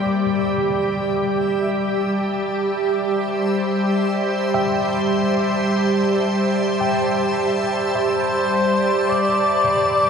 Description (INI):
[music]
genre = ambient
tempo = free time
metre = none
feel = none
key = unclear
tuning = A4 = 440 Hz
[part]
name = soft additive organ-like pad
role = sustained chords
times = 0.0-10.1 s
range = G3 to A5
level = -19 LUFS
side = right 1 dB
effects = ensemble chorus, built-in reverb, shimmer reverb
[part]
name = tine electric piano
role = arpeggios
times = 0.0-10.1 s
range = D5 to G5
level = -29 LUFS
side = equal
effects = overdrive, fast stereo tremolo, shimmer reverb, tape echo
[part]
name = bowed-like drone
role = drone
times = 0.1-10.1 s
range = G3 to G4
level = -28 LUFS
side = left 3 dB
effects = none
[part]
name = backwards swelling texture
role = texture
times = 0.0-10.1 s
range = D5 to E6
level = -31 LUFS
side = right 2 dB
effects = built-in reverb, shimmer reverb
[part]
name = mellow flugelhorn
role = melody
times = 8.0-10.1 s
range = C5 to D5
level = -21 LUFS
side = left 1 dB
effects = shimmer reverb
[sound]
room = wet huge ambient reverb, RT60 8.7 s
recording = none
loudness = -17 LUFS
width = side -6 dB against mid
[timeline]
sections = 0.0-10.1 A section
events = fade-in on synth texture 0.0-10.1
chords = 0.0 Am7/G; 9.1 G5